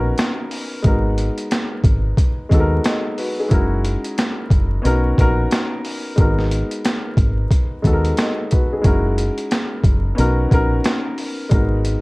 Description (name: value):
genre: hip hop, boom-bap hip-hop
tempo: 90 BPM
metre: 4/4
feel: swing 60% on 16ths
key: G# minor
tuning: A4 = 440 Hz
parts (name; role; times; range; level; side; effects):
- dark concert grand piano; accompaniment; 0.0-12.0 s; G#3 to D#5; -22 LUFS; left 1 dB; cassette tape, high-pass filter, low-pass filter, plate reverb
- deep dub fingered electric bass; bass; 0.0-12.0 s; F#1 to D#2; -18 LUFS; equal; none
- boom bap sampler-style drum kit; drums; 0.2-12.0 s; hi-hat, kick drum, snare drum; -18 LUFS; equal; overdrive
room: little or no reverb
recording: worn, warbling old tape, cassette tape, vinyl crackle, warbly pitch drift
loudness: -16 LUFS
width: side -25 dB against mid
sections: 0.0-12.0 A section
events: none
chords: 0.0 Bmaj7; 0.8 G#m7; 3.5 F#7; 4.8 Bmaj7; 6.2 G#m7; 8.8 F#7; 10.2 Bmaj7; 11.5 G#m7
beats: 0.18 | 0.84 1.51 2.18 2.84 | 3.51 4.18 4.84 5.51 | 6.18 6.84 7.51 8.18 | 8.84 9.51 10.18 10.84 | 11.51